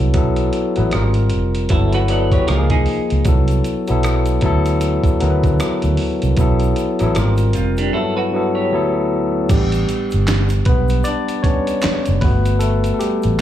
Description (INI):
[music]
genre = R&B, neo-soul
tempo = 77 BPM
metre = 4/4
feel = swing 60% on 16ths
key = unclear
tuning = A4 = 442 Hz
[part]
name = barky tine electric piano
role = accompaniment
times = 0.0-13.4 s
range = D2 to D5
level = -19 LUFS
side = left 2 dB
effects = slapback echo
[part]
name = vintage muted fingered electric bass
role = bass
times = 0.0-13.4 s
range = F1 to D3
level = -17 LUFS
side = right 1 dB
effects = none
[part]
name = dusty soul sampler-style drum kit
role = drums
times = 0.1-13.4 s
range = crash cymbal, handclaps, hi-hat, kick drum, rim click, snare drum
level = -21 LUFS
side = right 1 dB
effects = none
[part]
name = semi-hollow electric guitar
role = second line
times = 1.7-8.9 s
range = B#3 to D5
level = -22 LUFS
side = right 4 dB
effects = tremolo, slapback echo
[part]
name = egg shaker and finger snaps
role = percussion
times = 3.3-13.4 s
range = none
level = -37 LUFS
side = right 4 dB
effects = none
[sound]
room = little or no reverb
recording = live gig heard through the venue's PA, club reverb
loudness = -14 LUFS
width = side -11 dB against mid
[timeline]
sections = 0.0-9.5 A section; 9.5-13.4 B section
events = tine electric piano solo 9.5-13.4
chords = 0.1 B5; 0.9 G#maj9; 1.7 Gmaj9; 2.5 C#maj7; 3.3 Cmaj7; 4.4 D69; 6.4 B5; 7.2 G#maj9; 7.9 Gmaj9; 8.7 Dadd9; 9.5 A9sus4; 12.2 Gmaj9